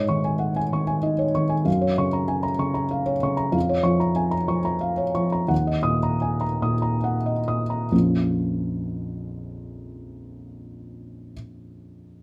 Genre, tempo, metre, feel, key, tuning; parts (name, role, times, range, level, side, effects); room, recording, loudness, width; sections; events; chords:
neoclassical minimalist piano; 44-64 BPM (dotted quarters); 6/8; rubato; Bb minor; A4 = 440 Hz
felt-muted upright piano; solo; 0.0-12.2 s; Bb1 to Eb6; -24 LUFS; equal
moderate studio reverb, RT60 0.8 s; -23 LUFS; mono
0.0-7.9 A section; 7.9-12.2 B section
slowing down 2.6-7.9
0.0 Absus4; 1.7 Gbmaj7; 3.5 Bbm7/F; 5.5 Ebm; 7.9 Bbm